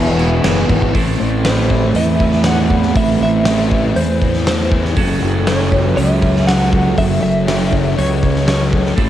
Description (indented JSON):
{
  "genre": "rock, shoegaze and dream pop",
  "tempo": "119 BPM",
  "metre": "4/4",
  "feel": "straight",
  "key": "unclear",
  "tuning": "A4 = 440 Hz",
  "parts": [
    { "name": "direct-recorded clean electric guitar", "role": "melody", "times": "0.0-8.8 s", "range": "C5 to F#5", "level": "-21 LUFS", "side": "equal", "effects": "tremolo, cassette tape, analog delay" },
    { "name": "picked twelve-string acoustic guitar", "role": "arpeggios", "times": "0.0-9.1 s", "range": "E3 to G#4", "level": "-26 LUFS", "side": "left 7 dB", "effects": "lush chorus, cassette tape, analog delay" },
    { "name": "biting overdriven guitar", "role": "riff", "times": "0.0-9.1 s", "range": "E3 to A4", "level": "-19 LUFS", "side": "right 8 dB", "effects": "reverse reverb, cassette tape" },
    { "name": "overdriven electric guitar", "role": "riff", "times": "0.0-0.9 s", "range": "E2 to E3", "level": "-18 LUFS", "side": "equal", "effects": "cassette tape" },
    { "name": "thick fuzz guitar", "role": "riff", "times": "0.0-9.1 s", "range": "E2 to A3", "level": "-21 LUFS", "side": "left 7 dB", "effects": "distortion, analog chorus, cassette tape" },
    { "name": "fuzz fingered electric bass", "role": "bass", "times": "0.0-9.1 s", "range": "E1 to E2", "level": "-18 LUFS", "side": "equal", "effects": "overdrive" },
    { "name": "gated 80s drum kit", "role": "drums", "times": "0.2-9.1 s", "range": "crash cymbal, hi-hat, kick drum, snare drum", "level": "-19 LUFS", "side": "equal", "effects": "cassette tape" }
  ],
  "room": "small room ambience",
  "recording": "home recording on cassette",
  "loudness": "-12 LUFS",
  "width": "side -12 dB against mid",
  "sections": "0.9-9.1 A section",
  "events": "none",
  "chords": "0.0 E; 0.9 Am; 5.0 F#m"
}